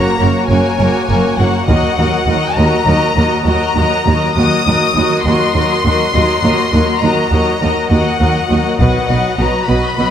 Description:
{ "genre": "cinematic, epic orchestral film score", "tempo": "68 BPM (dotted quarters)", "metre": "12/8", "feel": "straight", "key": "unclear", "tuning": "A4 = 440 Hz", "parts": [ { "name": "rich studio violin section", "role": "melody", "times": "0.0-10.1 s", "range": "Gb5 to Eb6", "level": "-18 LUFS", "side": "left 4 dB", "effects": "none" }, { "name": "rich studio violin section", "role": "second line", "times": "0.0-10.1 s", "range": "Bb4 to Eb5", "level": "-18 LUFS", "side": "left 3 dB", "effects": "none" }, { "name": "rich symphonic viola section", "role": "accompaniment", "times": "0.0-10.1 s", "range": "Gb3 to Gb4", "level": "-19 LUFS", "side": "right 2 dB", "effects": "none" }, { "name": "rich symphonic cello section", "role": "bass", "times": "0.2-10.1 s", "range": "Eb2 to B2", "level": "-17 LUFS", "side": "right 1 dB", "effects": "none" }, { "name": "rich symphonic double bass section", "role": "bass", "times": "0.2-10.1 s", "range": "Gb1 to Eb2", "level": "-18 LUFS", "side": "right 2 dB", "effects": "none" }, { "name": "taiko ensemble", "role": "drums", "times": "1.7-2.8, 8.8-9.9 s", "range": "none", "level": "-19 LUFS", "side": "equal", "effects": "none" } ], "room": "moderate scoring stage reverb, RT60 2.1 s", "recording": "none", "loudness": "-11 LUFS", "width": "side -9 dB against mid", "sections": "0.0-10.1 A section", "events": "none", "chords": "0.0 Gb; 1.7 Ebm; 8.8 B", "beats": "0.80 | 1.69 2.57 3.46 4.36 | 5.25 6.14 7.03 7.92 | 8.80 9.69" }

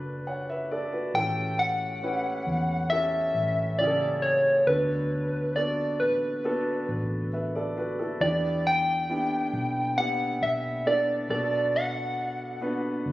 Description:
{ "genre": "pop ballad", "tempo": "68 BPM", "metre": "4/4", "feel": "straight", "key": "D major", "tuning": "A4 = 439 Hz", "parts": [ { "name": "warm concert grand piano", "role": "accompaniment", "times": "0.0-13.1 s", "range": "A2 to F#5", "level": "-31 LUFS", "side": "equal", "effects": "none" }, { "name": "vintage muted fingered electric bass", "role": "bass", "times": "0.0-13.1 s", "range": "F#1 to E2", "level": "-33 LUFS", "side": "equal", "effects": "none" }, { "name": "soft struck synth lead", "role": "melody", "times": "1.1-12.6 s", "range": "B4 to G5", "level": "-26 LUFS", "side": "equal", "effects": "chorus" } ], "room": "moderate lush hall reverb, RT60 2.8 s", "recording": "recorded on a phone in the room, studio reverb", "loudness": "-24 LUFS", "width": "side -16 dB against mid", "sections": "0.0-13.1 A section", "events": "none", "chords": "0.0 Bm7; 1.1 A7; 4.7 D6; 8.2 Em7; 11.3 Bm7", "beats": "0.27 | 1.15 2.03 2.91 3.80 | 4.68 5.56 6.44 7.33 | 8.21 9.09 9.97 10.86 | 11.74 12.62" }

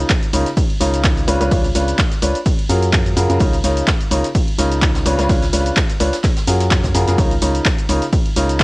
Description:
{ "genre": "piano house", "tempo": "127 BPM", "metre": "4/4", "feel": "swing 55% on 16ths", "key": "Db major", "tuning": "A4 = 437 Hz", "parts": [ { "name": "clear upright piano", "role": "riff", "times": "0.0-8.6 s", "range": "Db3 to Db5", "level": "-19 LUFS", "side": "equal", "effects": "sidechain pumping, tape echo" }, { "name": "organ-like FM bass", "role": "bass", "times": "0.0-8.6 s", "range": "Db2 to Gb2", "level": "-19 LUFS", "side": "equal", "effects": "tube saturation, sidechain pumping" }, { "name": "electronic kick drum", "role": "drums", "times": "0.1-8.6 s", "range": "none", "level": "-17 LUFS", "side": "equal", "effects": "cassette tape" }, { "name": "jazz brush drum kit", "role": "drums", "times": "0.1-8.6 s", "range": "hi-hat, snare drum", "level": "-34 LUFS", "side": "right 1 dB", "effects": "none" }, { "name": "punchy analog drum machine", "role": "drums", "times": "0.1-8.6 s", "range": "handclaps, hi-hat, ride cymbal, shaker", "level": "-22 LUFS", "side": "equal", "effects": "cassette tape" } ], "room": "little or no reverb", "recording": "home recording on cassette", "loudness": "-14 LUFS", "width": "side -23 dB against mid", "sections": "0.0-8.6 A section", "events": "none", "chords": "0.0 Db69; 1.3 Db7b9; 2.5 Gbmaj9; 3.4 Db69; 5.1 Db7b9; 6.2 Gbmaj9; 7.2 Db69", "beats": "0.10 0.57 1.04 | 1.51 1.99 2.46 2.93 | 3.40 3.88 4.35 4.82 | 5.29 5.77 6.24 6.71 | 7.18 7.66 8.13 8.60" }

